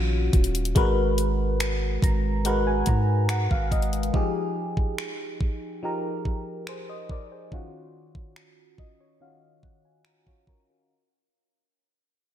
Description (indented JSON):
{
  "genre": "contemporary R&B",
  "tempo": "71 BPM",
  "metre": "4/4",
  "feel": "straight",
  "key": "Eb minor",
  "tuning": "A4 = 440 Hz",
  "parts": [
    { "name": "FM electric piano", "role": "accompaniment", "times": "0.0-11.1 s", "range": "Eb3 to Bb5", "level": "-28 LUFS", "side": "left 1 dB", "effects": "chorus, phaser, low-pass filter" },
    { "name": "long sustained 808-style bass", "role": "bass", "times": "0.0-4.1 s", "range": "Eb1 to Ab2", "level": "-25 LUFS", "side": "equal", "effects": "none" },
    { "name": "trap drum kit", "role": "drums", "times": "0.3-10.7 s", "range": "finger snaps, hi-hat, kick drum", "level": "-26 LUFS", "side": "equal", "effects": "none" }
  ],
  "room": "light reverb",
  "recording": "none",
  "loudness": "-22 LUFS",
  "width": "side -10 dB against mid",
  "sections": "0.0-10.9 A section",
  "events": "fade-out 0.0-10.9; filter sweep on FM electric piano 0.0-10.9; FM electric piano fill 1.6-4.1, 8.4-10.9",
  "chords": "0.0 Ebm9; 0.8 Abm9; 4.1 Fm9; 7.5 Ebm9"
}